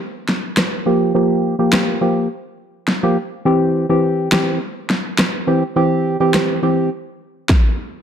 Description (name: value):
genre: dancehall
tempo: 104 BPM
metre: 4/4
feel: straight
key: unclear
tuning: A4 = 439 Hz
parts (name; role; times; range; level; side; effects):
- pop drum kit; drums; 0.3-7.6 s; kick drum, rim click, snare drum; -18 LUFS; equal; overdrive
- percussive organ stab; accompaniment; 0.9-6.9 s; E3 to G4; -15 LUFS; equal; chorus, sidechain pumping, low-pass filter
room: light reverb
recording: dark, warm production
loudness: -15 LUFS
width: side -8 dB against mid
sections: 0.0-8.0 A section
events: filter sweep on synth stab 0.0-8.0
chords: 0.0 Gm7; 3.5 C